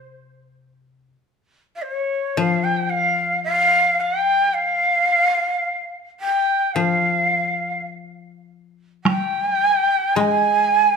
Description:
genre	japanese traditional, Japanese chamber music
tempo	54 BPM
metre	2/4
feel	rubato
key	unclear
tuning	A4 = 440 Hz
part	koto	accompaniment	0.0-11.0 s	C3 to Ab3	-24 LUFS	left 6 dB	none
part	breathy shakuhachi	melody	1.8-11.0 s	Db5 to C6	-17 LUFS	right 1 dB	none
part	taiko ensemble	percussion	9.1-9.3 s	none	-20 LUFS	right 3 dB	none
room	moderate recital hall reverb, RT60 1.4 s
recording	minimal, uncompressed stereo recording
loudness	-17 LUFS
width	side -5 dB against mid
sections	0.1-11.0 A section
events	none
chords	none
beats	| 0.12 1.27 | 2.40 3.50 | 4.59 5.68 | 6.78 7.91 | 9.05 10.18

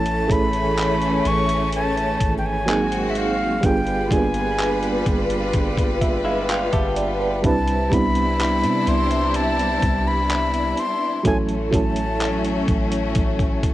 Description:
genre	contemporary R&B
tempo	63 BPM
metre	4/4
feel	straight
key	unclear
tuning	A4 = 441 Hz
part	breathy concert flute	melody	0.0-12.6 s	E5 to C#6	-24 LUFS	left 1 dB	cassette tape, analog delay
part	FM electric piano with tremolo	accompaniment	0.0-13.7 s	E3 to A5	-23 LUFS	right 3 dB	cassette tape
part	rich studio string section	sustained chords	0.0-13.7 s	C3 to B4	-25 LUFS	left 2 dB	sidechain pumping, cassette tape
part	soft 808-style bass	bass	0.0-13.7 s	G1 to C3	-26 LUFS	equal	none
part	dusty soul sampler-style drum kit	drums	0.1-13.7 s	handclaps, hi-hat, kick drum	-24 LUFS	equal	none
part	direct-recorded clean electric guitar	arpeggios	6.2-7.4 s	Ab3 to G4	-29 LUFS	left 4 dB	cassette tape, analog delay
room	light reverb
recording	home recording on cassette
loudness	-18 LUFS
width	side -15 dB against mid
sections	0.0-13.7 A section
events	FM electric piano fill 5.5-7.4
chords	0.0 Amaj7; 2.7 G#9; 3.6 G7b9; 7.4 Cmaj9; 11.2 A6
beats	0.77 1.73 2.68 | 3.63 4.58 5.54 6.49 | 7.44 8.39 9.35 10.30 | 11.25 12.20 13.15

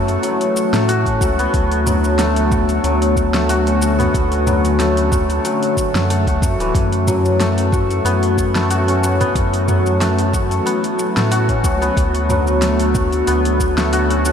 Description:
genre	organic downtempo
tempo	92 BPM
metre	4/4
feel	swing 54% on 16ths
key	F# minor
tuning	A4 = 439 Hz
part	warbly tape-like pad	sustained chords	0.0-14.3 s	D3 to F#4	-20 LUFS	left 1 dB	chorus, built-in reverb, sidechain pumping
part	santur	arpeggios	0.0-14.3 s	E3 to F#4	-18 LUFS	left 1 dB	ping-pong delay
part	round analog bass	bass	0.0-14.3 s	D1 to A2	-19 LUFS	equal	none
part	deep house drum kit	drums	0.1-14.3 s	hi-hat, shaker, snare drum, toms	-25 LUFS	right 1 dB	none
part	electronic kick drum	drums	1.1-13.7 s	none	-20 LUFS	equal	none
room	wet cathedral reverb, RT60 6.2 s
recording	dreamy mix soaked in reverb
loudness	-14 LUFS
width	side -8 dB against mid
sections	0.0-14.3 A section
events	none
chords	0.0 F#m7; 1.5 D6; 6.8 F#m7; 12.0 D6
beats	0.23 0.88 | 1.53 2.19 2.84 3.49 | 4.14 4.80 5.45 6.10 | 6.75 7.40 8.06 8.71 | 9.36 10.01 10.66 11.32 | 11.97 12.62 13.27 13.93

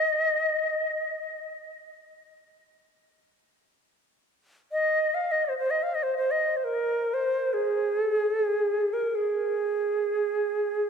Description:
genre	world meditative, free-time meditation music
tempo	free time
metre	none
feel	none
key	Ab major pentatonic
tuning	A4 = 440 Hz
part	Native American-style cedar flute	solo	0.0-10.9 s	Ab4 to F5	-24 LUFS	right 1 dB	ping-pong delay
room	wet plate reverb, RT60 2.7 s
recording	dreamy mix soaked in reverb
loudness	-24 LUFS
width	side -6 dB against mid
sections	0.0-10.9 A section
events	none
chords	none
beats	free time

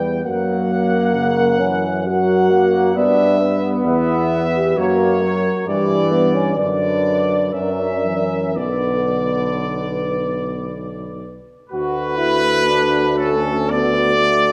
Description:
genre	classical, hymn-like piece for brass band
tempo	56-69 BPM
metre	3/4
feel	rubato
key	B minor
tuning	A4 = 441 Hz
part	clear trumpet section	melody	0.0-14.5 s	A4 to G5	-24 LUFS	equal	none
part	mellow French horn section	second line	0.0-14.5 s	F#4 to B4	-26 LUFS	equal	none
part	mellow trombone section	accompaniment	0.0-14.5 s	C#3 to F#4	-26 LUFS	equal	none
part	warm euphonium	accompaniment	0.0-14.5 s	G3 to G4	-22 LUFS	equal	none
part	warm tuba	bass	0.0-14.5 s	B1 to G2	-26 LUFS	equal	none
room	moderate concert hall reverb, RT60 1.8 s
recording	none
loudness	-18 LUFS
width	mono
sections	0.0-11.7 A section; 11.7-14.5 B section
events	none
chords	0.2 F#; 3.0 Em/G; 4.8 F#; 5.7 G; 6.6 Bm/F#; 7.5 F#7; 8.6 Bm; 11.7 D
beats	| 0.24 1.12 2.07 | 2.96 3.86 4.78 | 5.67 6.57 7.53 | 8.57 9.63 10.69 | 11.72 12.66 13.69

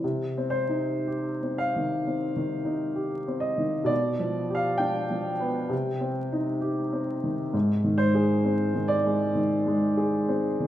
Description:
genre	classical, romantic nocturne for solo piano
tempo	65 BPM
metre	4/4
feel	rubato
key	C minor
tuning	A4 = 440 Hz
part	warm baby grand piano	solo	0.0-10.7 s	Ab2 to G5	-24 LUFS	equal	none
room	wet recital hall reverb, RT60 1.5 s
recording	minimal, uncompressed stereo recording, vinyl crackle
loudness	-24 LUFS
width	side -12 dB against mid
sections	0.0-10.7 A section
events	none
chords	0.0 Cm; 3.9 G7/B; 5.7 Cm; 7.5 Ab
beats	| 0.02 1.06 2.06 2.97 | 3.90 4.82 5.71 6.63 | 7.54 8.45 9.37 10.30

